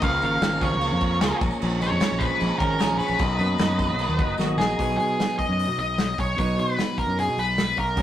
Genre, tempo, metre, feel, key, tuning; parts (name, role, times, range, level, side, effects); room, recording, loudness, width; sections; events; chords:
indie rock; 151 BPM; 4/4; straight; B lydian; A4 = 441 Hz
octave-fuzz lead guitar; melody; 0.0-8.0 s; G#4 to E#5; -25 LUFS; left 1 dB; distortion
mellow tonewheel organ; sustained chords; 0.0-4.8 s; D#5 to D#6; -34 LUFS; left 1 dB; slow rotary speaker, chorus vibrato
electric guitar through a small old amp; riff; 0.0-8.0 s; F#2 to G#4; -36 LUFS; left 3 dB
overdriven electric guitar; riff; 0.0-8.0 s; F#2 to G#4; -29 LUFS; right 3 dB
growling fingered electric bass; bass; 0.0-8.0 s; F#1 to B2; -27 LUFS; equal; overdrive
loose indie drum kit; drums; 0.0-8.0 s; crash cymbal, hi-hat, kick drum, snare drum; -27 LUFS; equal
tambourine; percussion; 0.1-4.8 s; -47 LUFS; left 5 dB
wet studio reverb, RT60 0.6 s; rough rehearsal-room recording; -21 LUFS; side -11 dB against mid
0.0-4.8 A section; 4.8-8.0 B section
drum fill 4.4-4.8
0.0 C#6; 3.2 Bmaj7; 4.8 B6